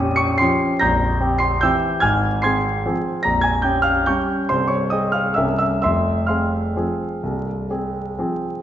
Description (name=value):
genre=classical, piano waltz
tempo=122-156 BPM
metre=3/4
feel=rubato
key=F minor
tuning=A4 = 439 Hz
part: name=clear concert grand piano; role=solo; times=0.0-8.6 s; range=Bb0 to Eb7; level=-17 LUFS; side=equal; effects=none
room=wet recital hall reverb, RT60 1.6 s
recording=recorded in a church or concert hall, vinyl crackle, nothing above 7.8 kHz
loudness=-17 LUFS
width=side -10 dB against mid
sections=0.0-8.6 A section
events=none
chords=0.0 Gm7b5/Bb; 0.8 C7/Bb; 2.0 Fm/Ab; 3.3 Gdim/Bb; 4.5 Fm/C; 5.3 C7b9; 5.8 Fm